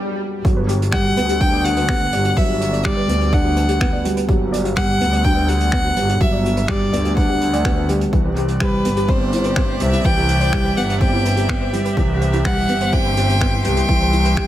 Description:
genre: piano and strings electronica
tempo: 125 BPM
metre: 4/4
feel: straight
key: unclear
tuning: A4 = 443 Hz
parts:
  - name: felt-muted upright piano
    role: riff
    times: 0.0-14.5 s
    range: E3 to D4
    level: -21 LUFS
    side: right 1 dB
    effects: tape echo
  - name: soft round pluck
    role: arpeggios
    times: 0.4-14.4 s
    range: E4 to D5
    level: -28 LUFS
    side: left 2 dB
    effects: lush chorus, sidechain pumping, tape echo
  - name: bright symphonic double bass section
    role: bass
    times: 0.4-14.5 s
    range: G1 to D2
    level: -20 LUFS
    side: equal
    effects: sidechain pumping
  - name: electronic kick drum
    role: drums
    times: 0.4-14.5 s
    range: none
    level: -20 LUFS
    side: equal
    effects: none
  - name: vintage brush drum kit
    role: drums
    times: 0.5-14.5 s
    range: finger snaps, hi-hat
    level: -29 LUFS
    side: right 1 dB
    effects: high-pass filter on hats, high-pass filter on snare, high-pass filter on room
  - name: warm violin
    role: melody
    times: 0.9-14.5 s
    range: B4 to G5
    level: -22 LUFS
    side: equal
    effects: tape echo
  - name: rich string quartet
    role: sustained chords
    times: 8.3-14.5 s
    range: G4 to C6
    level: -28 LUFS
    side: equal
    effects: none
room: light reverb, studio reverb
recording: none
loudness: -15 LUFS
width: side -13 dB against mid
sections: 0.4-14.5 A section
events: break 0.0-0.4; drop 0.4-14.5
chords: 0.4 Gmaj7; 8.1 Cmaj7

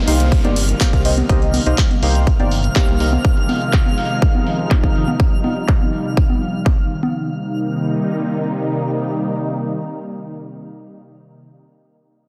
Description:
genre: progressive house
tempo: 123 BPM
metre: 4/4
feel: straight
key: C minor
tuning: A4 = 440 Hz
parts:
  - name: filtered supersaw swell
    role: sustained chords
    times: 0.0-11.5 s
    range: C3 to Eb4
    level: -24 LUFS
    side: equal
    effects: sidechain pumping
  - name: downlifter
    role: sound effects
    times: 0.0-3.2 s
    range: none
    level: -35 LUFS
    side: equal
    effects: none
  - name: twinkling granular texture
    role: texture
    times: 0.0-7.2 s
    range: F5 to F6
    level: -32 LUFS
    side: equal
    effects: built-in reverb, sidechain pumping
  - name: deep mellow chord stab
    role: stabs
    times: 0.1-3.1 s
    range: Bb3 to F5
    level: -25 LUFS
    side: equal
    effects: chorus, sidechain pumping, delay
  - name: round analog bass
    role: bass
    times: 0.1-3.2 s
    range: G1 to C2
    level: -20 LUFS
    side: equal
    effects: sidechain pumping
  - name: deep house drum kit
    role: drums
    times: 0.1-7.1 s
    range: handclaps, hi-hat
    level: -28 LUFS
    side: equal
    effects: sidechain pumping on hats, low-pass filter on hats, studio reverb, sidechain pumping on perc, low-pass filter on perc, low-pass filter on snare
  - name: electronic kick drum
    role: drums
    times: 0.3-6.8 s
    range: none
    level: -18 LUFS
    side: equal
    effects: studio reverb
  - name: congas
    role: percussion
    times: 0.4-7.1 s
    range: none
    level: -28 LUFS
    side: equal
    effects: sidechain pumping on perc, studio reverb, sidechain pumping on toms
room: little or no reverb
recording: dense, heavily limited modern master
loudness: -17 LUFS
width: mono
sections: 0.0-7.1 A section; 7.1-11.1 B section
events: filter sweep on drum 0.0-7.1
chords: 0.0 Cm7; 3.2 Ab6; 7.1 Cm7

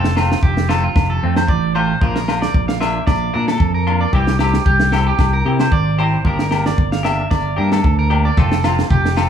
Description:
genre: highlife guitar band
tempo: 113 BPM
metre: 4/4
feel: swing 54% on 16ths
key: F major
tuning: A4 = 441 Hz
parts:
  - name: semi-hollow electric guitar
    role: accompaniment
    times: 0.0-9.3 s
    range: E3 to G4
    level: -24 LUFS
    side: left 6 dB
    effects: none
  - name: electric guitar at the edge of break-up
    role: arpeggios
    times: 0.0-9.3 s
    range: F4 to F5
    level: -21 LUFS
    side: right 4 dB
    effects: spring reverb, analog delay
  - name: fingered electric bass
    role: bass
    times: 0.0-9.3 s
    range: F1 to C3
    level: -17 LUFS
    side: equal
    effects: none
  - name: tight funk drum kit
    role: drums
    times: 0.0-9.3 s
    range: kick drum, snare drum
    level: -19 LUFS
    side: equal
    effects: none
  - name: agogo bells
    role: percussion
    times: 0.2-9.3 s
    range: none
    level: -25 LUFS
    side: left 10 dB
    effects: none
  - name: shekere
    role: percussion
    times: 8.4-9.3 s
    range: none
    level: -19 LUFS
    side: right 5 dB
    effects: none
room: little or no reverb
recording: small room ambience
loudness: -14 LUFS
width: side -8 dB against mid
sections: 0.0-9.3 A section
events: none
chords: 0.0 F; 2.0 Bb; 4.1 C; 6.3 Gm7; 8.4 F

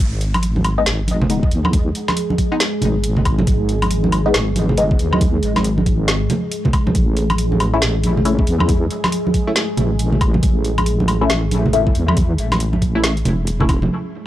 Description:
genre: deep dubstep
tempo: 138 BPM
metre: 4/4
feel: swing 62% on 16ths, half-time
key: unclear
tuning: A4 = 443 Hz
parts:
  - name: deep dark ambient pad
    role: sustained chords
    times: 1.6-14.3 s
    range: G#3 to G#4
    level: -25 LUFS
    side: equal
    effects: chorus, built-in reverb
  - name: deep soft wobble bass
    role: bass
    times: 0.0-13.9 s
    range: E1 to E2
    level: -19 LUFS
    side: equal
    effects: chorus
  - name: garage drum kit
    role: drums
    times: 0.2-13.8 s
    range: hi-hat, snare drum, woodblock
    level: -21 LUFS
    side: equal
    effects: overdrive, small room ambience
  - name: congas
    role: percussion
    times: 0.3-13.9 s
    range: none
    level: -21 LUFS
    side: right 2 dB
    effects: none
  - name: filtered dub chord stab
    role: stabs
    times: 0.8-5.0, 7.7-13.8 s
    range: G#3 to E4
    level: -23 LUFS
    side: left 2 dB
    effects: phaser, lush chorus, dub echo
  - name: electronic kick drum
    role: drums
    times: 1.4-13.8 s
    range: none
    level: -18 LUFS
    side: equal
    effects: overdrive, small room ambience
room: little or no reverb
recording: dry, gritty hardware recording, transformer saturation, cassette tape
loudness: -15 LUFS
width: side -14 dB against mid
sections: 0.0-13.9 A section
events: none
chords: 0.0 G#5; 7.0 A

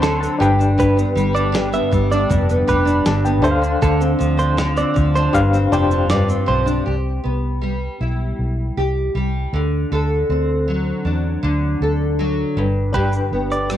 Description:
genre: acoustic pop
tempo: 79 BPM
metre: 4/4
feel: straight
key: C major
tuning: A4 = 440 Hz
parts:
  - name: barky reed electric piano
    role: accompaniment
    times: 0.0-6.9, 12.9-13.8 s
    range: D4 to D6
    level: -23 LUFS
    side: left 5 dB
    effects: overdrive, tremolo
  - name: nylon-string guitar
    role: accompaniment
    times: 0.0-13.8 s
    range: G2 to A4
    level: -20 LUFS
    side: equal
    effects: double-tracked left and right
  - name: direct-recorded clean electric guitar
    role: arpeggios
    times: 0.0-6.7, 12.9-13.7 s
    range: G4 to E5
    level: -23 LUFS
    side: right 4 dB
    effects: none
  - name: vintage muted fingered electric bass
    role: bass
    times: 0.0-13.8 s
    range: F1 to E2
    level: -20 LUFS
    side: equal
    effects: none
  - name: dusty soul sampler-style drum kit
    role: drums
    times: 0.0-6.8, 12.9-13.8 s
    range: kick drum, rim click, shaker, snare drum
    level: -24 LUFS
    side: equal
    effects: cassette tape
room: light reverb, digital ambience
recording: home recording on cassette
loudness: -16 LUFS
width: side -11 dB against mid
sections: 0.0-6.9 A section; 6.9-13.8 B section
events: none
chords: 0.4 G; 3.4 Dm7; 5.3 G7sus4; 6.9 Cmaj7; 9.5 D7; 12.6 G

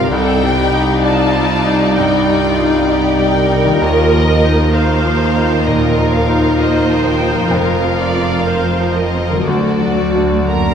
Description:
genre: cinematic, emotional film score for orchestra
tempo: 65 BPM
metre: 4/4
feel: rubato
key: unclear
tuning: A4 = 439 Hz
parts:
  - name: rich symphonic violin section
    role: melody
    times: 0.0-10.7 s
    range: D5 to A5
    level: -22 LUFS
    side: left 1 dB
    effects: none
  - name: rich chamber violin section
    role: second line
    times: 0.0-10.7 s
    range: Eb4 to Bb5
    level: -20 LUFS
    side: left 3 dB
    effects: none
  - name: bright concert grand piano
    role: accompaniment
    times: 0.0-10.7 s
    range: C2 to D5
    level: -16 LUFS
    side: left 2 dB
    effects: none
  - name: clear symphonic viola section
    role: accompaniment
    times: 0.0-10.7 s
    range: Eb4 to D5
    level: -21 LUFS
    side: right 4 dB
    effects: none
  - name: concert harp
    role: arpeggios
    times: 0.0-10.7 s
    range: C3 to D6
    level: -23 LUFS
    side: left 5 dB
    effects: none
  - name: clear studio double bass section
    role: bass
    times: 0.0-10.7 s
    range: F1 to Eb2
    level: -21 LUFS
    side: right 2 dB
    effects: none
  - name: warm symphonic cello section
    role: bass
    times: 0.0-10.7 s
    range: C2 to Bb3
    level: -19 LUFS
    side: right 4 dB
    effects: none
room: wet scoring stage reverb, RT60 2.0 s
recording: minimal, uncompressed stereo recording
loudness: -11 LUFS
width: side -8 dB against mid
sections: 0.0-10.7 A section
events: none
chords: 0.1 Cmadd9; 3.8 Ebsus2; 7.5 Fsus4; 9.5 D

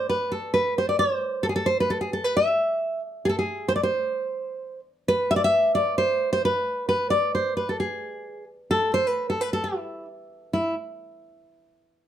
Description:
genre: klezmer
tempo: 132 BPM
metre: 2/4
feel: straight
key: unclear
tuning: A4 = 441 Hz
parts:
  - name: nylon-string guitar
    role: solo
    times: 0.0-10.7 s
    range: E4 to E5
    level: -22 LUFS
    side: equal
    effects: none
room: moderate studio reverb, RT60 0.6 s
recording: dark, warm production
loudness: -22 LUFS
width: side -10 dB against mid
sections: 0.0-3.2 A section; 3.2-10.5 A section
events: none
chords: none

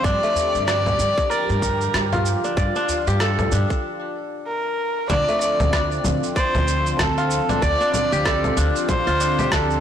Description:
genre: organic downtempo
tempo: 95 BPM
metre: 4/4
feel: swing 59% on 16ths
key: D minor pentatonic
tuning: A4 = 440 Hz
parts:
  - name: clear kamancheh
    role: melody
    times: 0.0-9.8 s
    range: A4 to D5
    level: -22 LUFS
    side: equal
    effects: digital delay
  - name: warm analog pad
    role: sustained chords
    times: 0.0-9.8 s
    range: D3 to G4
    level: -29 LUFS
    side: right 1 dB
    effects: chorus, sidechain pumping
  - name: kora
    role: arpeggios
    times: 0.0-9.8 s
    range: A3 to D5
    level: -26 LUFS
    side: left 1 dB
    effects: digital delay
  - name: upright bass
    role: bass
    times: 0.0-9.8 s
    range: D2 to G2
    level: -23 LUFS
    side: equal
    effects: tube saturation, sidechain pumping
  - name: electronic cabasa, rim click and congas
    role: drums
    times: 0.0-9.8 s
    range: none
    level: -26 LUFS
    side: equal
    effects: soft clipping on snare
  - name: electronic kick drum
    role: drums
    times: 0.0-9.7 s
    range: none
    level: -24 LUFS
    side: equal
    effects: overdrive
  - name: udu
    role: percussion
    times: 0.4-3.5 s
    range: none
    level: -33 LUFS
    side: right 2 dB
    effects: none
room: moderate lush hall reverb, RT60 1.7 s, small room reverb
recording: blown-out, overdriven recording, overdrive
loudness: -18 LUFS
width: side -9 dB against mid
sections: 0.0-5.1 A section; 5.1-9.8 B section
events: break 3.8-5.1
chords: 0.0 Gmadd9; 5.1 Dm7

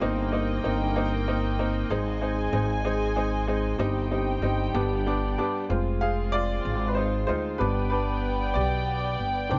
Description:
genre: pop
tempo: 63 BPM (dotted quarters)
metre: 6/8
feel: straight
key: C minor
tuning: A4 = 440 Hz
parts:
  - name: clear upright piano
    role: accompaniment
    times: 0.0-9.6 s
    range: Eb3 to F5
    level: -30 LUFS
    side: equal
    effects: none
  - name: dark studio string section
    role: sustained chords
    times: 0.0-9.6 s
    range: C3 to Ab5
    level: -34 LUFS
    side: equal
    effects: none
  - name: upright bass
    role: bass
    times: 0.0-9.6 s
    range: F1 to D2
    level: -31 LUFS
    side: equal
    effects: none
room: light reverb, small room ambience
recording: nothing above 7.6 kHz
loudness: -27 LUFS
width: mono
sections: 0.0-5.7 A section; 5.7-9.6 B section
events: upright piano solo 5.7-9.6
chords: 0.0 Cm7/G; 1.9 Ab; 3.8 Cm/G; 4.7 G; 5.7 Fm; 7.6 G

